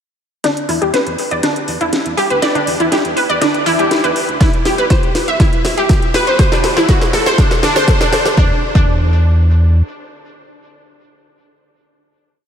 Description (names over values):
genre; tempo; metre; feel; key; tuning
progressive house; 121 BPM; 4/4; straight; unclear; A4 = 440 Hz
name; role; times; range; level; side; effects
wide unison pluck; arpeggios; 0.4-8.9 s; D4 to E5; -15 LUFS; equal; lush chorus, sidechain pumping, ping-pong delay
house drum kit; drums; 0.4-8.3 s; hi-hat, snare drum; -20 LUFS; equal; overdrive, sidechain pumping on hats
round analog bass; bass; 0.7-9.8 s; D1 to E2; -16 LUFS; equal; sidechain pumping, high-pass filter
electronic kick drum; drums; 4.4-8.9 s; none; -13 LUFS; equal; overdrive
room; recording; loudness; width
wet huge ambient reverb, RT60 4.1 s; dreamy mix soaked in reverb; -11 LUFS; side -8 dB against mid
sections
0.4-8.4 build; 8.4-12.3 final chord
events
build-up 0.4-8.4; drum fill 0.4-8.4; filter sweep on synth pluck 0.4-8.4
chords
0.4 E7(no3); 4.4 C5; 6.4 N.C.; 8.4 Dsus2/E